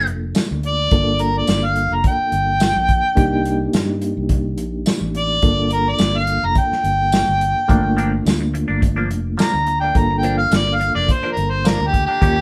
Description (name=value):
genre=straight-eighth soul blues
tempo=106 BPM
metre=4/4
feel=swing 54% on 16ths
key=G minor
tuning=A4 = 440 Hz
part: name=mellow harmonica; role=melody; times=0.0-12.4 s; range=G4 to Bb5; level=-21 LUFS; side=equal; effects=overdrive
part: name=reed electric piano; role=accompaniment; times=0.0-12.4 s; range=A3 to A4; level=-26 LUFS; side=equal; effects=fast tremolo
part: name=fingered electric bass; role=bass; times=0.0-12.4 s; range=F1 to G2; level=-25 LUFS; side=equal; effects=none
part: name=warm soul drum kit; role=drums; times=0.1-12.4 s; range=hi-hat, kick drum, snare drum, tambourine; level=-21 LUFS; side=equal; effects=none
part: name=direct-recorded clean electric guitar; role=stabs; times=7.7-12.4 s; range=F3 to G4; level=-29 LUFS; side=equal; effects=phaser
room=moderate studio reverb, RT60 0.6 s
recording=band playing live in one room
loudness=-18 LUFS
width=mono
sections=0.0-12.4 A section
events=harmonica solo 0.0-12.4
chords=0.0 Gm7; 3.2 Cm7; 5.4 Gm7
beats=0.35 | 0.92 1.48 2.04 2.61 | 3.17 3.74 4.30 4.87 | 5.43 6.00 6.56 7.13 | 7.69 8.26 8.82 9.39 | 9.95 10.52 11.08 11.65 | 12.21